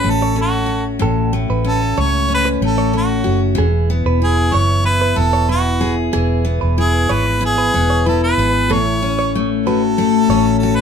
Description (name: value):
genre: acoustic pop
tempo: 94 BPM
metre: 4/4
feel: straight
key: A major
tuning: A4 = 444 Hz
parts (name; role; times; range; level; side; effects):
- clear harmonica; melody; 0.0-10.8 s; F#4 to C#5; -18 LUFS; right 2 dB; none
- picked steel-string acoustic guitar; accompaniment; 0.0-10.8 s; A2 to G#4; -18 LUFS; left 5 dB; none
- direct-recorded clean electric guitar; arpeggios; 0.0-10.4 s; G#4 to C#5; -24 LUFS; right 6 dB; none
- vintage muted fingered electric bass; bass; 0.0-10.8 s; E1 to C#2; -18 LUFS; right 1 dB; none
room: light reverb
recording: minimal, uncompressed stereo recording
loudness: -14 LUFS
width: side -7 dB against mid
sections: 0.0-8.7 A section; 8.7-10.8 B section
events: none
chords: 0.0 A6; 3.6 E; 8.7 A6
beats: 0.38 | 1.02 1.66 2.30 2.94 | 3.58 4.22 4.86 5.50 | 6.14 6.78 7.42 8.05 | 8.70 9.33 9.97 10.61